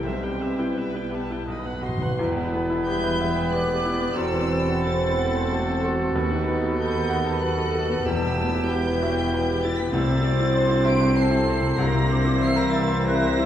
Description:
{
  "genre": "classical, romantic movement for piano and orchestra",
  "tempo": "82-99 BPM",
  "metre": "3/4",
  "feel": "rubato",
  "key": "E minor",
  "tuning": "A4 = 445 Hz",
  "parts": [
    { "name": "clear baby grand piano", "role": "melody", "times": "0.0-13.5 s", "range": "B1 to C6", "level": "-25 LUFS", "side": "left 2 dB", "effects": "none" },
    { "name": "warm chamber violin section", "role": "melody", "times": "0.0-13.5 s", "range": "G5 to D7", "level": "-33 LUFS", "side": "left 1 dB", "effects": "none" },
    { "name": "dark studio violin section", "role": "second line", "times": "0.0-13.5 s", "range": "E4 to E5", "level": "-33 LUFS", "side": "left 2 dB", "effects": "none" },
    { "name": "warm studio viola section", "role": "accompaniment", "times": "0.0-13.5 s", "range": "E3 to G5", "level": "-33 LUFS", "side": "right 1 dB", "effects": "none" },
    { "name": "mellow French horn section", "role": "sustained chords", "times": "0.0-12.0 s", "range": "G3 to A4", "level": "-35 LUFS", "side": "left 3 dB", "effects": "none" },
    { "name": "dark studio double bass section", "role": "bass", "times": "0.0-13.5 s", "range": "E1 to D#2", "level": "-31 LUFS", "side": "right 2 dB", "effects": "none" },
    { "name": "warm studio cello section", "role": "bass", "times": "0.0-13.5 s", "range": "D#2 to C4", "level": "-30 LUFS", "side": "right 1 dB", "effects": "none" },
    { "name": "timpani", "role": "percussion", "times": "1.5-2.1, 8.1-9.0 s", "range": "E2 to B2", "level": "-31 LUFS", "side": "equal", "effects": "none" },
    { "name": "mellow clarinet", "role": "second line", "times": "2.2-13.5 s", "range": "E4 to F#4", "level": "-33 LUFS", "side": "left 2 dB", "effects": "none" },
    { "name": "mellow hollow small flute group", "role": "second line", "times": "2.2-13.5 s", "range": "G5 to F#6", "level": "-34 LUFS", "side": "left 1 dB", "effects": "none" },
    { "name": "warm oboe", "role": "second line", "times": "2.2-13.5 s", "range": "G4 to C5", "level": "-33 LUFS", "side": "right 3 dB", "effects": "none" },
    { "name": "mellow bassoon", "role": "accompaniment", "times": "2.2-13.5 s", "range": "Bb3 to C4", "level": "-32 LUFS", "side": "right 4 dB", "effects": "none" },
    { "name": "warm tuba", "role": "bass", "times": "2.2-13.5 s", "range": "E1 to D#2", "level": "-31 LUFS", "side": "right 3 dB", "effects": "none" }
  ],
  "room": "wet recital hall reverb, RT60 1.6 s",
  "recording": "minimal, uncompressed stereo recording",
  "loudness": "-21 LUFS",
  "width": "side -10 dB against mid",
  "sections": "0.0-2.2 A section; 2.2-13.5 B section",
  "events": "timpani fill 1.5-2.2",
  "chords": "0.0 Em/B; 1.5 B; 2.2 Em; 4.2 F#m7b5/E; 6.1 B7/D#; 8.1 Em; 9.9 Am/C; 11.8 C7"
}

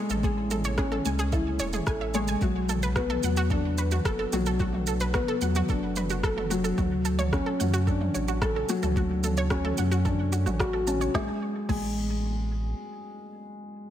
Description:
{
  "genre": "piano and strings electronica",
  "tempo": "110 BPM",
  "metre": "4/4",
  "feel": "straight",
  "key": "unclear",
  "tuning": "A4 = 438 Hz",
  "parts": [
    { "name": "felt-muted upright piano", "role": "riff", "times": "0.0-13.9 s", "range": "F#3 to A4", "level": "-28 LUFS", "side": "left 2 dB", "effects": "tape echo" },
    { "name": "analog pluck", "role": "arpeggios", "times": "0.1-11.8 s", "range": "F#4 to A5", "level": "-34 LUFS", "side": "right 4 dB", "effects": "chorus, sidechain pumping, tape echo" },
    { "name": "warm sub bass", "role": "bass", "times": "0.1-12.7 s", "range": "E1 to F#2", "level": "-29 LUFS", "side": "equal", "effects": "sidechain pumping" },
    { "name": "organic electronic drum kit", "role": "drums", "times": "0.1-11.9 s", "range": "crash cymbal, rim click, shaker, snare drum, toms", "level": "-34 LUFS", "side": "right 2 dB", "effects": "overdrive, studio reverb" },
    { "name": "electronic kick drum", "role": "drums", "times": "0.2-11.9 s", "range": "none", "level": "-30 LUFS", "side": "equal", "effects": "overdrive, studio reverb" }
  ],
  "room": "light reverb",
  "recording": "none",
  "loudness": "-24 LUFS",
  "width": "side -11 dB against mid",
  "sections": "0.0-11.1 A section; 11.1-13.9 B section",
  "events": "drop 0.0-11.1",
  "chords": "0.0 Amaj7; 2.4 Bm7; 6.8 Dmaj7; 11.1 N.C."
}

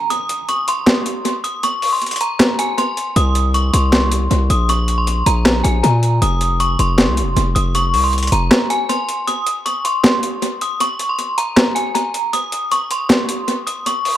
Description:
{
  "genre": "hip hop, trap",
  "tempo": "157 BPM",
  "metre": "4/4",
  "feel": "half-time",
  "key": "unclear",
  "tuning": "A4 = 440 Hz",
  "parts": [
    { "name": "metallic FM bell", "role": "melody", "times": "0.0-14.1 s", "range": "Ab5 to Eb6", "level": "-19 LUFS", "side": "equal", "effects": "chorus, phaser, low-pass filter, tape echo" },
    { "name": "boom bap sampler-style drum kit", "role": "drums", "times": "0.1-14.1 s", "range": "handclaps, hi-hat, snare drum", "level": "-17 LUFS", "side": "equal", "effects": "overdrive, tape echo" },
    { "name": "distorted 808-style bass", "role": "bass", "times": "3.2-8.5 s", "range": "F1 to Bb2", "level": "-16 LUFS", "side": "equal", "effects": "distortion" }
  ],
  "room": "light reverb",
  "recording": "echo-heavy mix",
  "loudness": "-14 LUFS",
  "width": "side -12 dB against mid",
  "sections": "0.0-14.2 A section",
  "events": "break 0.0-3.2, 9.3-14.2; kick muted 8.5-9.3",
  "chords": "0.0 N.C.; 3.2 Cm; 4.7 N.C.; 6.2 F5; 9.3 N.C."
}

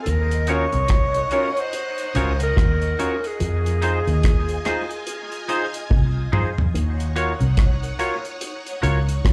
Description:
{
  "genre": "lovers rock reggae",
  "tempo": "72 BPM",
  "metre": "4/4",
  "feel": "swing 60% on 16ths",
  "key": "Eb dorian",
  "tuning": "A4 = 439 Hz",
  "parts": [
    { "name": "breathy alto saxophone", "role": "melody", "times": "0.0-5.8 s", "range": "Ab4 to Db5", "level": "-27 LUFS", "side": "equal", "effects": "tape echo, plate reverb, slapback echo" },
    { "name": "phased string machine", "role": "second line", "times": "0.0-9.3 s", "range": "Eb4 to Ab5", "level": "-36 LUFS", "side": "equal", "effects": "ensemble chorus, phaser, dub echo, plate reverb, slapback echo" },
    { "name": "electric guitar with an envelope filter", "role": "riff", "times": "0.1-9.3 s", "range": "C3 to F3", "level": "-32 LUFS", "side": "equal", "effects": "none" },
    { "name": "vintage muted fingered electric bass", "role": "bass", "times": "0.1-9.3 s", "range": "C2 to F2", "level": "-24 LUFS", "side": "equal", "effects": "none" },
    { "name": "deep reggae drum kit", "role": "drums", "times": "0.1-9.3 s", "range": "hi-hat, kick drum, rim click, toms", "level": "-24 LUFS", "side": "equal", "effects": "none" },
    { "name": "barky tine electric piano", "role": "accompaniment", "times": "0.5-9.0 s", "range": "Db4 to Db5", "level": "-29 LUFS", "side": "equal", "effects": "overdrive, plate reverb, slapback echo" },
    { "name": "twangy electric guitar", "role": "stabs", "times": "0.5-9.0 s", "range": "Eb4 to Db5", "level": "-34 LUFS", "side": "equal", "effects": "dub echo, plate reverb, slapback echo" }
  ],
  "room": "light reverb",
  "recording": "live gig heard through the venue's PA, club reverb",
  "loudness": "-21 LUFS",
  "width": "mono",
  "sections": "0.0-9.3 A section",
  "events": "drum fill 5.9-6.7",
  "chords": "0.1 Ebm7; 3.4 Fm7; 6.7 Ebm7"
}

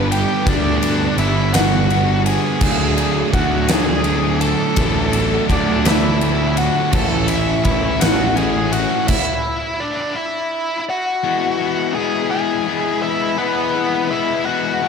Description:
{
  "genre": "quiet-loud alternative rock",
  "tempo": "56 BPM (dotted quarters)",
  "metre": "6/8",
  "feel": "straight",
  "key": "E mixolydian",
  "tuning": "A4 = 440 Hz",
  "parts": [
    { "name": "smooth overdriven lead guitar", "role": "melody", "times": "0.0-14.9 s", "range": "B3 to A5", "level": "-20 LUFS", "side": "left 1 dB", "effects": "slapback echo" },
    { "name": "clear studio string section", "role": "sustained chords", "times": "0.0-14.9 s", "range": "G#3 to D6", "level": "-32 LUFS", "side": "left 1 dB", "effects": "none" },
    { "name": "distorted electric guitar", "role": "riff", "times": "0.0-14.9 s", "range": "G2 to E4", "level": "-22 LUFS", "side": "left 12 dB", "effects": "distortion" },
    { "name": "thick fuzz guitar", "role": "riff", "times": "0.0-9.1 s", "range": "G2 to E4", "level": "-22 LUFS", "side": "right 11 dB", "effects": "distortion" },
    { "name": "fuzz picked electric bass", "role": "bass", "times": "0.0-8.8 s", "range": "G1 to D2", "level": "-21 LUFS", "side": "equal", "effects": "overdrive" },
    { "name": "huge arena drum kit", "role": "drums", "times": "0.1-9.3 s", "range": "crash cymbal, kick drum, ride cymbal, snare drum", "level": "-20 LUFS", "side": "equal", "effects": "none" }
  ],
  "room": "moderate lush hall reverb, RT60 2.7 s",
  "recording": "big arena sound",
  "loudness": "-15 LUFS",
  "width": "side -6 dB against mid",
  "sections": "0.0-11.2 A section; 11.2-14.9 A section",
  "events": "stop 9.1-11.2",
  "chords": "0.0 G; 2.6 D; 6.9 A; 11.2 E"
}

